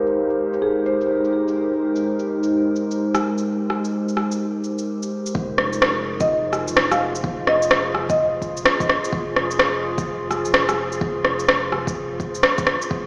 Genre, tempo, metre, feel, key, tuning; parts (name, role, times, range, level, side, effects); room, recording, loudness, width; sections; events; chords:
future garage; 127 BPM; 4/4; swing 63% on 16ths; F minor; A4 = 441 Hz
marimba with soft mallets; melody; 0.0-1.3, 6.2-8.6 s; Ab4 to F5; -26 LUFS; equal; digital delay
warbly tape-like pad; sustained chords; 0.0-13.1 s; Ab3 to C5; -25 LUFS; equal; chorus, built-in reverb, sidechain pumping
electronic shaker and rim click; drums; 0.1-12.9 s; -23 LUFS; equal; overdrive
electronic kick drum; drums; 5.3-13.0 s; -29 LUFS; equal; overdrive
warm sub bass; bass; 5.4-13.1 s; F1 to Ab1; -37 LUFS; equal; sidechain pumping
moderate huge ambient reverb, RT60 5.2 s; played on a big sound system in a bare room, large studio reverb, low-pass filter, small speaker sound; -21 LUFS; mono
0.0-5.4 A section; 5.4-13.1 B section
filter sweep 0.0-5.4
0.0 Abmaj7; 5.4 Fm